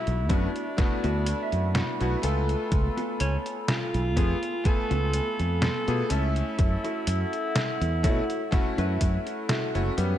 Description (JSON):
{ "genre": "vaporwave", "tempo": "62 BPM", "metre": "4/4", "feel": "swing 53% on 16ths", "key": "unclear", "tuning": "A4 = 436 Hz", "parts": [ { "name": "clear alto saxophone", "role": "melody", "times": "0.0-9.5 s", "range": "C#4 to A4", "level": "-33 LUFS", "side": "right 1 dB", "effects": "tape echo" }, { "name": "bright electric grand piano", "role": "accompaniment", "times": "0.0-10.2 s", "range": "G3 to G#5", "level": "-32 LUFS", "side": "left 2 dB", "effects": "wide subtle chorus, vintage 12-bit sampler grit, tape echo" }, { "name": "warbly tape-like pad", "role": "sustained chords", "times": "0.0-10.2 s", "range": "F#4 to F#6", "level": "-37 LUFS", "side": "equal", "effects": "chorus, built-in reverb" }, { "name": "mellow electric guitar", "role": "riff", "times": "0.1-10.0 s", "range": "B3 to G#5", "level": "-35 LUFS", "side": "equal", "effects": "wide subtle chorus, tape echo" }, { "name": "fingered electric bass", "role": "bass", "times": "0.1-10.1 s", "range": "F#1 to B2", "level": "-26 LUFS", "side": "equal", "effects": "none" }, { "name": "detuned 8-bit digital drum machine", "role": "drums", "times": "0.1-10.2 s", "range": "hi-hat, snare drum", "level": "-31 LUFS", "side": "equal", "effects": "overdrive" }, { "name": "electronic kick drum", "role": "drums", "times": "0.3-9.2 s", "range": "none", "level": "-24 LUFS", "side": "equal", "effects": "overdrive" } ], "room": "light reverb", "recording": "none", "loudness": "-24 LUFS", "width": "side -11 dB against mid", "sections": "0.0-10.2 A section", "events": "clean electric guitar fill 0.8-2.7", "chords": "0.0 D69; 2.2 C#7b13; 6.6 F#m7", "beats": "0.79 1.75 | 2.72 3.69 4.66 5.62 | 6.59 7.56 8.53 9.49" }